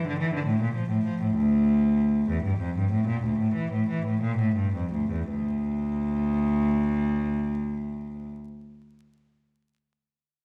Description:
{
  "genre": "classical, baroque-style suite movement for unaccompanied cello",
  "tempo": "53-75 BPM (dotted quarters)",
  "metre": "12/8",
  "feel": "rubato",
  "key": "D minor",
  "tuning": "A4 = 440 Hz",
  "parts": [
    { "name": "rich cello", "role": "solo", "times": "0.0-8.3 s", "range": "D2 to F3", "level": "-26 LUFS", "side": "equal", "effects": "none" }
  ],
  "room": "wet stone room reverb, RT60 1.3 s",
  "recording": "heard from further back in the room, vinyl crackle",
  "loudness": "-26 LUFS",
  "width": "mono",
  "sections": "0.0-5.3 A section; 5.3-9.3 B section",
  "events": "slowing down 0.0-5.3",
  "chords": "none"
}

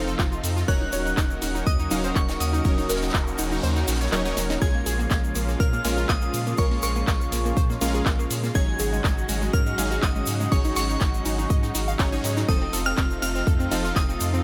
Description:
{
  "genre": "progressive house",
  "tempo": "122 BPM",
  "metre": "4/4",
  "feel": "straight",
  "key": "Bb minor",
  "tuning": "A4 = 441 Hz",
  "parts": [
    { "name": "glassy synth bell", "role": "melody", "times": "0.0-14.4 s", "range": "C6 to Ab6", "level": "-34 LUFS", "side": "equal", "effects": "chorus, phaser, digital delay" },
    { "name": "lush unison pad", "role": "sustained chords", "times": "0.0-14.4 s", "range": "C3 to Gb4", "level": "-34 LUFS", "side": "equal", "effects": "chorus, sidechain pumping" },
    { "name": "supersaw stab", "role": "stabs", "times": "0.0-14.4 s", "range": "F3 to F5", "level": "-33 LUFS", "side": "equal", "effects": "sidechain pumping, digital delay" },
    { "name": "saturated sub bass", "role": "bass", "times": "0.0-14.4 s", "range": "Eb1 to Bb2", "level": "-30 LUFS", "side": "equal", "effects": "sidechain pumping" },
    { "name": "analog pluck", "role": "arpeggios", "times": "0.1-14.4 s", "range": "Ab3 to F5", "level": "-34 LUFS", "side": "equal", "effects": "chorus, cassette tape, sidechain pumping, digital delay" },
    { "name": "tube shaker", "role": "percussion", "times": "0.1-14.4 s", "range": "none", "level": "-38 LUFS", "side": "equal", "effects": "none" },
    { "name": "electronic kick drum", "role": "drums", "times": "0.2-14.1 s", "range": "none", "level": "-25 LUFS", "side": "equal", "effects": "none" },
    { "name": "house drum kit", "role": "drums", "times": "0.2-14.3 s", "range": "handclaps, hi-hat, snare drum", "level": "-34 LUFS", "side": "equal", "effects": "none" },
    { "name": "unplugged drum kit", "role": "drums", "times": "0.2-14.3 s", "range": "hi-hat, snare drum", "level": "-42 LUFS", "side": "equal", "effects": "none" },
    { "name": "noise sweep", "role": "sound effects", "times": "3.0-4.6 s", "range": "none", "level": "-40 LUFS", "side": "equal", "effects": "none" }
  ],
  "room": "light reverb, small room ambience",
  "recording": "none",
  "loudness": "-24 LUFS",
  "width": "mono",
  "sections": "0.0-14.4 A section",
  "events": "kick drops out 3.6-4.6; drum fill 4.4",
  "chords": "0.0 F7; 0.7 Ebm7; 4.6 Bbm7; 8.6 Ab7sus4; 12.5 F7"
}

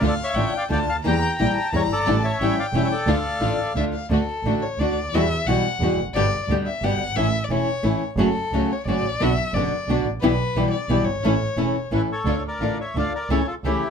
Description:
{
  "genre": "tango",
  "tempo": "176 BPM",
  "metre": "3/4",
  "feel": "rubato",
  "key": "D harmonic minor, D major from 4.1 s",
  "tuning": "A4 = 440 Hz",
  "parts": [
    { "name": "bandoneon", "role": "melody", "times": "0.0-3.7, 11.9-13.9 s", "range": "E4 to Bb5", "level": "-26 LUFS", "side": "left 1 dB", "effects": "none" },
    { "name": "dark violin", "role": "second line", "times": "0.0-11.9 s", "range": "A4 to Bb5", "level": "-27 LUFS", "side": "left 4 dB", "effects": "none" },
    { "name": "flamenco guitar", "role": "accompaniment", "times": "0.0-13.8 s", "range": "B2 to G4", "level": "-23 LUFS", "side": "left 2 dB", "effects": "none" },
    { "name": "clear symphonic string section", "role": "stabs", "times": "0.0-13.8 s", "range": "G3 to A4", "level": "-31 LUFS", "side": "right 1 dB", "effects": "none" },
    { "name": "clear double bass", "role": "bass", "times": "0.0-13.8 s", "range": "E1 to E2", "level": "-25 LUFS", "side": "right 3 dB", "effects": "none" }
  ],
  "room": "light reverb",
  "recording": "none",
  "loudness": "-20 LUFS",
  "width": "side -6 dB against mid",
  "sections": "0.0-4.1 A section; 4.1-12.3 B section; 12.3-13.9 A section",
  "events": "violin solo 4.1-12.3",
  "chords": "0.0 Dm; 1.1 Edim; 2.1 A7sus4; 2.4 A7; 3.1 Dm; 4.1 D; 5.1 Emadd9; 6.2 G; 7.2 A; 8.2 F#m; 9.2 Bm; 10.2 Em/B; 11.2 A; 12.3 Dm; 13.3 A/C#"
}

